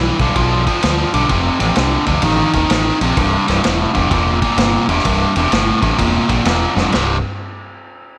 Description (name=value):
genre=blues rock power trio and southern rock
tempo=128 BPM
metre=4/4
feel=swing 66% on 8ths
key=C mixolydian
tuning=A4 = 440 Hz
part: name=biting overdriven guitar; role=riff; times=0.0-7.2 s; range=C2 to F3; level=-18 LUFS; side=equal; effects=none
part: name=growling fingered electric bass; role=bass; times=0.0-7.2 s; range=C1 to D2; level=-21 LUFS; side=equal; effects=overdrive
part: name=vintage drum kit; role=drums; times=0.2-7.1 s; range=crash cymbal, kick drum, ride cymbal, snare drum, toms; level=-22 LUFS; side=equal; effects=none
room=light reverb, small room reverb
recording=none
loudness=-15 LUFS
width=mono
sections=0.0-6.9 A section; 6.9-8.2 B section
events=drum fill 6.7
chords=0.0 G7; 1.3 F7; 3.2 C7; 6.9 C5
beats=0.37 0.83 | 1.30 1.77 2.24 2.71 | 3.17 3.64 4.11 4.58 | 5.04 5.51 5.98 6.45 | 6.92